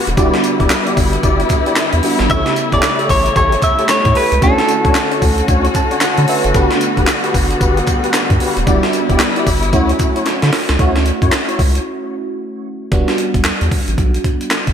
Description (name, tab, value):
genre	R&B, new jack swing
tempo	113 BPM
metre	4/4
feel	swing 61% on 16ths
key	E dorian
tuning	A4 = 435 Hz
part	FM electric piano	accompaniment	0.0-14.7 s	C#3 to A5	-20 LUFS	right 2 dB	chorus, phaser, slapback echo
part	dark symphonic string section	sustained chords	0.0-10.8 s	C#3 to F#4	-20 LUFS	left 2 dB	none
part	tonewheel organ	stabs	0.0-11.6 s	D4 to D5	-21 LUFS	left 2 dB	chorus vibrato, slow rotary speaker, slapback echo, ping-pong delay
part	round analog bass	bass	0.1-14.7 s	D#1 to D3	-17 LUFS	equal	none
part	breakbeat sampler-style drum kit	drums	0.1-14.7 s	handclaps, hi-hat, kick drum, snare drum, tambourine	-16 LUFS	equal	none
part	group handclap	percussion	0.7-14.7 s	none	barely audible	none	none
part	direct-recorded clean electric guitar	melody	2.3-5.5 s	A4 to E5	-16 LUFS	equal	ping-pong delay
room	moderate lush hall reverb, RT60 2.5 s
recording	big arena sound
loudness	-12 LUFS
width	side -8 dB against mid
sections	0.0-10.8 A section; 10.8-12.9 B section; 12.9-14.7 C section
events	FM electric piano fill 5.5-6.5; drum fill 10.3-10.8; break 11.9-12.9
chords	0.2 Em7; 2.3 A7; 4.4 Dmaj7; 6.5 Gmaj7; 8.7 Em7; 9.7 Dmaj9; 12.9 Em9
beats	| 0.17 0.70 1.24 1.77 | 2.30 2.83 3.36 3.89 | 4.42 4.95 5.48 6.01 | 6.55 7.08 7.61 8.14 | 8.67 9.20 9.73 10.26 | 10.79 11.32 11.86 12.39 | 12.92 13.45 13.98 14.51